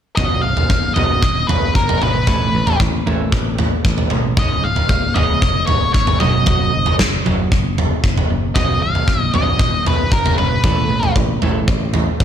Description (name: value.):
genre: quiet-loud alternative rock.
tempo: 115 BPM.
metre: 4/4.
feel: straight.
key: unclear.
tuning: A4 = 440 Hz.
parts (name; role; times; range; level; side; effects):
octave-fuzz lead guitar; melody; 0.2-11.1 s; A#4 to E#5; -20 LUFS; left 1 dB; distortion, analog delay.
twelve-string electric guitar; arpeggios; 0.2-12.2 s; B1 to A3; -25 LUFS; right 2 dB; harmonic tremolo.
modern bright picked electric bass; bass; 0.2-12.2 s; B0 to A1; -22 LUFS; equal; none.
big rock drum kit; drums; 0.2-12.2 s; kick drum, snare drum, toms; -16 LUFS; equal; none.
room: light reverb, studio ambience.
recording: none.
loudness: -14 LUFS.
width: side -9 dB against mid.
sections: 0.2-12.2 A section.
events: none.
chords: 0.2 B; 2.3 Asus2; 4.4 C#add9; 6.2 F#5; 8.6 B; 10.6 Asus2.